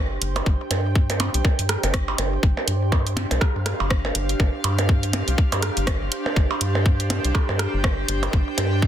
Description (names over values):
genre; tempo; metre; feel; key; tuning
minimal techno; 122 BPM; 4/4; swing 58% on 16ths; unclear; A4 = 440 Hz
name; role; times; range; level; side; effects
rubbery square bass; bass; 0.0-8.9 s; G1 to G2; -24 LUFS; equal; sidechain pumping
airy breathy pad; texture; 0.0-8.9 s; D4 to G5; -30 LUFS; right 1 dB; chorus, sidechain pumping
bubbling stepped-filter texture; texture; 0.0-8.9 s; C5; -36 LUFS; right 2 dB; chorus, built-in reverb, sidechain pumping
garage drum kit; drums; 0.2-8.7 s; hi-hat, rim click; -27 LUFS; right 1 dB; overdrive
electronic percussion blips and rim click; percussion; 0.4-8.7 s; none; -27 LUFS; right 3 dB; ping-pong delay
electronic kick drum; drums; 0.5-8.9 s; none; -20 LUFS; equal; overdrive
room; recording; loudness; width
little or no reverb; dense, heavily limited modern master; -19 LUFS; side -10 dB against mid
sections
0.0-8.9 A section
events
none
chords
0.0 G5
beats
| 0.46 0.95 1.45 1.94 | 2.43 2.92 3.41 3.91 | 4.40 4.89 5.38 5.87 | 6.37 6.86 7.35 7.84 | 8.33 8.82